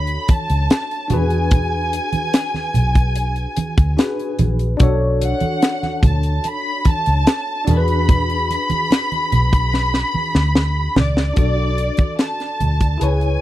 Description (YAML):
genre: lush 1970s-style soul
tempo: 73 BPM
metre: 4/4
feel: straight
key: B dorian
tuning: A4 = 441 Hz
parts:
  - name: warm studio violin section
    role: melody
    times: 0.0-13.4 s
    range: D5 to B5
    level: -22 LUFS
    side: equal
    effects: none
  - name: barky tine electric piano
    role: accompaniment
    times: 0.0-13.4 s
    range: D4 to D5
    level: -26 LUFS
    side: left 3 dB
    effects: phaser
  - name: vintage muted fingered electric bass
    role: bass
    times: 0.0-13.4 s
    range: A#1 to E2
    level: -18 LUFS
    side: equal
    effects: none
  - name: tight funk drum kit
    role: drums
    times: 0.1-13.4 s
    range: hi-hat, kick drum, snare drum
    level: -16 LUFS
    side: equal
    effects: none
  - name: congas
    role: percussion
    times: 0.3-13.2 s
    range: none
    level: -24 LUFS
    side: right 3 dB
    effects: none
room: studio ambience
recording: dry, close 1970s-style studio recording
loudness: -15 LUFS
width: side -14 dB against mid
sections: 0.0-11.4 A section; 11.4-13.4 B section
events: drum fill 9.7-11.4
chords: 0.0 Bm9; 1.1 E7; 4.8 Bm9; 7.7 E7; 11.4 Bm7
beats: 0.70 | 1.52 2.34 3.16 3.98 | 4.80 5.62 6.45 7.27 | 8.09 8.91 9.73 10.55 | 11.37 12.19 13.01